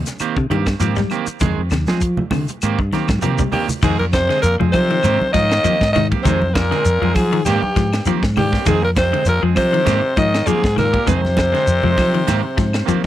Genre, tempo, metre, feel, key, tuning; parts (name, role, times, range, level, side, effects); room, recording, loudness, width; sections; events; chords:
afrobeat; 100 BPM; 4/4; swing 54% on 16ths; F dorian; A4 = 444 Hz
clean electric guitar; arpeggios; 0.0-13.1 s; C3 to G3; -23 LUFS; left 8 dB
clean electric guitar; stabs; 0.1-13.1 s; Eb3 to Ab4; -24 LUFS; right 10 dB; tape echo
tight funk drum kit; drums; 0.1-13.1 s; crash cymbal, hi-hat, kick drum, ride cymbal, snare drum; -24 LUFS; equal
shekere; percussion; 0.1-13.0 s; -24 LUFS; left 1 dB
fingered electric bass; bass; 0.2-12.9 s; Eb2 to F3; -20 LUFS; equal
claves; percussion; 0.2-12.9 s; -32 LUFS; left 5 dB
congas; percussion; 0.5-13.0 s; -24 LUFS; right 2 dB
raspy alto saxophone; melody; 3.5-13.1 s; G4 to Eb5; -19 LUFS; equal
breathy tenor saxophone; second line; 3.5-13.1 s; G3 to Eb4; -28 LUFS; right 3 dB
brilliant bass trombone; second line; 3.5-13.1 s; G2 to Eb3; -27 LUFS; left 7 dB
little or no reverb; dry, close 1970s-style studio recording; -14 LUFS; side -13 dB against mid
0.0-3.8 A section; 3.8-13.1 B section
drum fill 2.9-3.8
0.2 Abmaj9; 1.4 Fm7; 2.6 Abmaj9; 3.8 Fm7; 5.0 Abmaj9; 6.3 Fm7; 7.5 Abmaj9; 8.7 Fm7; 9.9 Abmaj9; 11.1 Fm7; 12.3 Abmaj9